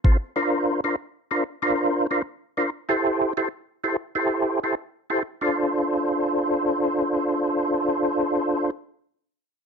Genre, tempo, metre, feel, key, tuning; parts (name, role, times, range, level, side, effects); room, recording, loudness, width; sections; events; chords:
dancehall; 95 BPM; 4/4; straight; D minor; A4 = 439 Hz
percussive tonewheel organ; accompaniment; 0.0-8.7 s; C4 to C5; -21 LUFS; equal; chorus vibrato, fast rotary speaker
light reverb; dark, warm production; -22 LUFS; side -6 dB against mid
0.0-5.4 A section; 5.4-7.9 B section
0.4 Bbadd9; 2.9 Am7; 5.4 Dm7